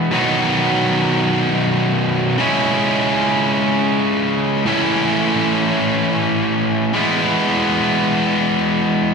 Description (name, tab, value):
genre	rock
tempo	free time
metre	none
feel	none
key	E major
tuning	A4 = 440 Hz
part	distorted electric guitar	solo	0.0-9.1 s	A2 to E4	-15 LUFS	equal	overdrive
room	wet church reverb, RT60 3.4 s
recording	recorded in a church or concert hall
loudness	-15 LUFS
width	side -5 dB against mid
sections	0.0-9.1 A section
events	none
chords	0.1 B; 2.4 C#m; 4.7 A; 6.9 E